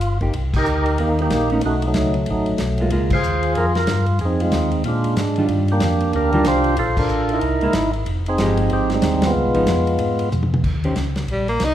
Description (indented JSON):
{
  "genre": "soul jazz organ trio",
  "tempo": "186 BPM",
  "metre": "4/4",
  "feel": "swing 61% on 8ths",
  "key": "unclear",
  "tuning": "A4 = 439 Hz",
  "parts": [
    { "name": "percussive tonewheel organ", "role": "melody", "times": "0.0-10.3 s", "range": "F#3 to C5", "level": "-20 LUFS", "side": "right 1 dB", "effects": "slow rotary speaker" },
    { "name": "mellow tonewheel organ", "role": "bass", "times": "0.0-11.7 s", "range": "F1 to Bb2", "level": "-22 LUFS", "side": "left 1 dB", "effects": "chorus vibrato, slow rotary speaker" },
    { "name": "warm soul drum kit", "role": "drums", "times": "0.0-11.7 s", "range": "crash cymbal, hi-hat, kick drum, ride cymbal, snare drum, toms", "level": "-26 LUFS", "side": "equal", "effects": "none" },
    { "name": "hollow-body jazz guitar", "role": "accompaniment", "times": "0.2-3.1, 5.4-11.0 s", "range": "Eb3 to C5", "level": "-24 LUFS", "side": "right 1 dB", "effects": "none" },
    { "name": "clear tenor saxophone", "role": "melody", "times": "11.3-11.7 s", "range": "G3 to Eb4", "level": "-20 LUFS", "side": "equal", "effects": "none" }
  ],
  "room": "moderate recital hall reverb, RT60 1.5 s",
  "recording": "recorded in a church or concert hall",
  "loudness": "-17 LUFS",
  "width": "side -11 dB against mid",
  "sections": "0.3-10.6 A section; 10.6-11.7 B section",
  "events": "break 0.0-0.3; band accent 0.5, 3.1, 6.9, 9.2; drum fill 10.3-10.6; tenor saxophone solo 10.6-11.7",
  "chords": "0.3 Cm7; 1.6 B9; 2.9 Db6; 4.2 Fm7; 4.8 Bb7; 5.5 Ebmaj9; 6.8 Bbmaj9#11; 7.4 C7alt; 8.1 Fm9; 9.4 Db7; 10.6 Eb7(no3)"
}